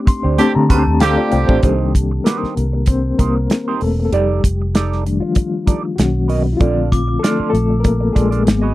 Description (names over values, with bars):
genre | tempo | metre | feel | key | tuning
lush 1970s-style soul | 96 BPM | 4/4 | swing 54% on 16ths | unclear | A4 = 441 Hz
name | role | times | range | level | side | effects
reed electric piano | accompaniment | 0.0-8.7 s | D3 to C6 | -18 LUFS | left 3 dB | fast tremolo
mellow electric guitar | riff | 0.1-8.7 s | A3 to D#5 | -21 LUFS | right 6 dB | wah, tube saturation
vintage muted fingered electric bass | bass | 0.1-8.7 s | E1 to D3 | -18 LUFS | equal | none
damped 70s drum kit | drums | 0.1-8.6 s | hi-hat, kick drum, snare drum | -14 LUFS | equal | none
clear horn section | stabs | 0.4-1.6 s | D3 to G4 | -18 LUFS | right 6 dB | none
glockenspiel with brass mallets | texture | 0.7-1.9, 6.9-8.7 s | A5 to D6 | -32 LUFS | left 3 dB | none
room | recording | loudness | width
light reverb | dry, close 1970s-style studio recording | -14 LUFS | side -16 dB against mid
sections
0.0-1.6 A section; 1.6-8.7 B section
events
reed electric piano fill 0.0-1.6; reed electric piano solo 1.6-8.7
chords
0.0 D7sus4; 1.6 Cm7; 4.1 F13; 6.0 Bmaj7; 6.6 Bbmaj7